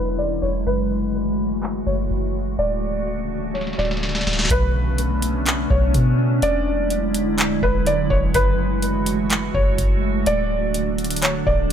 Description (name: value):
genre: hip hop, atmospheric cloud-rap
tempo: 125 BPM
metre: 4/4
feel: half-time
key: F# minor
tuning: A4 = 441 Hz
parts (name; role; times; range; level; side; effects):
- felt-muted upright piano; melody; 0.0-11.7 s; B4 to D5; -24 LUFS; equal; low-pass filter, digital delay
- glassy FM pad; sustained chords; 0.0-11.7 s; C#3 to F#4; -24 LUFS; right 1 dB; ensemble chorus, built-in reverb, sidechain pumping
- soft 808-style bass; bass; 0.0-11.7 s; D1 to B2; -23 LUFS; equal; none
- booming analog drum machine; drums; 1.6-11.7 s; handclaps, hi-hat, kick drum, snare drum; -22 LUFS; equal; none
- reverse cymbal and impact; sound effects; 3.8-6.4 s; none; -31 LUFS; left 1 dB; none
room: light reverb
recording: low-pass filter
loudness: -18 LUFS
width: side -8 dB against mid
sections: 0.0-4.5 A section; 4.5-11.7 B section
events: filter sweep 0.0-4.5; drum fill 3.5-4.5; reverse cymbal 3.8-4.5; impact 4.5-6.4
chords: 0.0 E9; 0.7 F#m9; 2.6 Dmaj7; 4.5 Bm9; 6.4 E9; 8.3 F#m9; 10.3 D